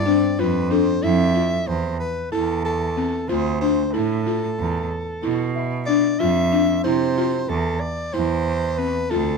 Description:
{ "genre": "contemporary instrumental, chamber music in an uneven meter", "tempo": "186 BPM (eighths)", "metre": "9/8", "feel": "straight", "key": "F lydian", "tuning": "A4 = 441 Hz", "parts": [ { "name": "growling soprano saxophone", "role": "melody", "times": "0.0-9.4 s", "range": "A4 to E5", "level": "-25 LUFS", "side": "equal", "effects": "none" }, { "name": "rich cello", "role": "bass", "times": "0.0-9.4 s", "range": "D2 to C3", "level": "-23 LUFS", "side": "right 4 dB", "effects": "none" }, { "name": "celesta", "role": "texture", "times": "0.0-6.5 s", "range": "A4 to A5", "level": "-33 LUFS", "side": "left 4 dB", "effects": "none" }, { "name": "buzzing marimba with soft mallets", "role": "arpeggios", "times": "0.1-9.3 s", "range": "C4 to F4", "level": "-22 LUFS", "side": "left 4 dB", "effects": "none" } ], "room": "light reverb", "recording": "minimal, uncompressed stereo recording", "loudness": "-19 LUFS", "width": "side -4 dB against mid", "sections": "0.4-9.4 A section", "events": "none", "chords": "0.4 Fmaj9; 1.7 A5/E; 3.3 Dm; 4.6 E5; 6.2 F5; 7.5 D7sus2/E", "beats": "0.07 | 0.39 0.71 1.03 1.36 1.68 2.00 2.33 2.65 2.97 | 3.29 3.62 3.94 4.26 4.59 4.91 5.24 5.56 5.88 | 6.21 6.53 6.85 7.18 7.50 7.82 8.15 8.47 8.79 | 9.12" }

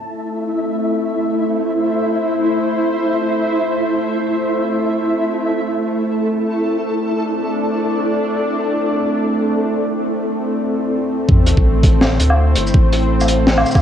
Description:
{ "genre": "half-time drum and bass", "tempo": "free time", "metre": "none", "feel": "none", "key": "A minor", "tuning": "A4 = 440 Hz", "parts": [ { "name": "bowed-like drone", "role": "sustained chords", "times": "0.1-13.8 s", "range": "A3 to D5", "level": "-18 LUFS", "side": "equal", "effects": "built-in reverb, vintage 12-bit sampler grit, sidechain pumping, cassette tape" }, { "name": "flickering grainy texture", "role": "texture", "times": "0.0-11.3 s", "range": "E4 to E5", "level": "-21 LUFS", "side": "equal", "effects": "built-in reverb, cassette tape" }, { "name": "saturated sub bass", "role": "bass", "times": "11.3-13.6 s", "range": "G1 to D2", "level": "-16 LUFS", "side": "equal", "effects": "none" }, { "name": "electronic kick drum", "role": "drums", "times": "11.3-13.8 s", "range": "none", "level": "-12 LUFS", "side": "equal", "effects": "overdrive, cassette tape" }, { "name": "sub drop", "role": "sound effects", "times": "11.3-12.7 s", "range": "none", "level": "-20 LUFS", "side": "equal", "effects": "none" }, { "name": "crunchy breakbeat drum kit", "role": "drums", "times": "11.5-13.8 s", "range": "hi-hat, shaker, snare drum, woodblock", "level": "-17 LUFS", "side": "equal", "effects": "low-pass filter on hats, cassette tape, low-pass filter on snare, low-pass filter on perc, low-pass filter on room" } ], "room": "wet studio reverb, RT60 0.6 s", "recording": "home recording on cassette", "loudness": "-15 LUFS", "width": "side -9 dB against mid", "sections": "0.0-11.3 A section; 11.3-13.8 B section", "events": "drop 11.3-13.8; impact 11.3-12.7", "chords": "0.0 Am", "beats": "free time" }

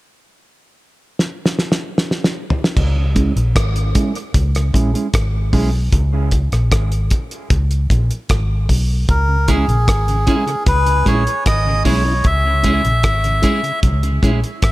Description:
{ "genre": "dub reggae", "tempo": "76 BPM", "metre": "4/4", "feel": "straight", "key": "C# dorian", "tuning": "A4 = 440 Hz", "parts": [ { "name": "cloth-damped thuddy drum kit", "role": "drums", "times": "1.2-14.7 s", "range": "crash cymbal, hi-hat, kick drum, rim click, snare drum, toms", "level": "-18 LUFS", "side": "equal", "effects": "none" }, { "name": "vintage muted fingered electric bass", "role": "bass", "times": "2.8-14.7 s", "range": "G#1 to C#2", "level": "-17 LUFS", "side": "equal", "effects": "none" }, { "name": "mellow tonewheel organ", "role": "accompaniment", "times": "3.0-3.1, 9.3-14.3 s", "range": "C#3 to E4", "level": "-26 LUFS", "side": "left 2 dB", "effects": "chorus vibrato, low-pass filter" }, { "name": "clean electric guitar", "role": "accompaniment", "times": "3.1-14.4 s", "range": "G#3 to G#4", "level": "-23 LUFS", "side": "right 3 dB", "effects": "low-pass filter, dub echo" }, { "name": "melodica", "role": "melody", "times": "9.1-14.7 s", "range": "G#4 to E5", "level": "-19 LUFS", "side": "equal", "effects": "dub echo" } ], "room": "small room ambience", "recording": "none", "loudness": "-14 LUFS", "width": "side -18 dB against mid", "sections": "0.0-2.8 A section; 2.8-9.1 B section; 9.1-14.7 C section", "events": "drum fill 1.2-2.8; filter sweep 2.8-9.1", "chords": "0.0 N.C.; 2.8 C#m", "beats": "0.39 1.18 1.97 | 2.76 3.55 4.34 5.13 | 5.92 6.72 7.51 8.30 | 9.09 9.88 10.67 11.46 | 12.25 13.04 13.83 14.62" }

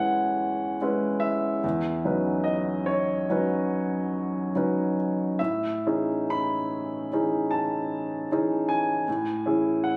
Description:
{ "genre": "classical, impressionist solo piano", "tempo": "42-54 BPM (dotted quarters)", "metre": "9/8", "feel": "rubato", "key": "unclear", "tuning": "A4 = 440 Hz", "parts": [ { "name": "clear baby grand piano", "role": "solo", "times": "0.0-10.0 s", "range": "E2 to B5", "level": "-26 LUFS", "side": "equal", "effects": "none" } ], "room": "light reverb", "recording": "recorded on a phone in the room, club reverb, compression", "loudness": "-26 LUFS", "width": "mono", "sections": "0.0-10.0 A section", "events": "none", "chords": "0.0 E6; 1.6 C#m11/E; 5.4 Amaj7#11; 9.1 E6/A", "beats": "0.38 | 1.63 2.87 4.14 | 5.39 6.72 7.91 | 9.07" }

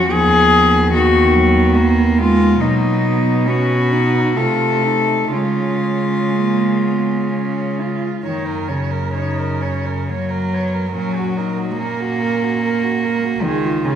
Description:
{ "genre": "classical, lyrical piece for cello ensemble", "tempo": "59-74 BPM", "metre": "3/4", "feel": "rubato", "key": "F# major", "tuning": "A4 = 440 Hz", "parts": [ { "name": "warm cello", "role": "melody", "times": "0.0-14.0 s", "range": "A#3 to A4", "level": "-19 LUFS", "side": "left 3 dB", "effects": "none" }, { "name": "dark cello", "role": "second line", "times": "0.0-14.0 s", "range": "A#3 to C#5", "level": "-23 LUFS", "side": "right 5 dB", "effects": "none" }, { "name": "rich cello", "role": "accompaniment", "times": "0.0-14.0 s", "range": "C#3 to B3", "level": "-20 LUFS", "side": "equal", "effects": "none" }, { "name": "warm cello", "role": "bass", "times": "0.0-14.0 s", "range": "C#2 to C#3", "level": "-21 LUFS", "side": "right 1 dB", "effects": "none" } ], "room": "wet recital hall reverb, RT60 1.7 s", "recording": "recorded in a church or concert hall", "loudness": "-14 LUFS", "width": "side -9 dB against mid", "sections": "0.0-8.2 A section; 8.2-14.0 B section", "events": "none", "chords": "0.1 B/D#; 2.6 Bmaj7; 4.4 F7/C; 5.3 C#; 8.2 F#; 10.9 F#/A#; 13.4 C#", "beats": "| 0.10 0.93 1.77 | 2.61 3.47 4.36 | 5.33 6.33 7.32 | 8.24 9.13 10.08 | 10.93 11.77 12.61 | 13.43" }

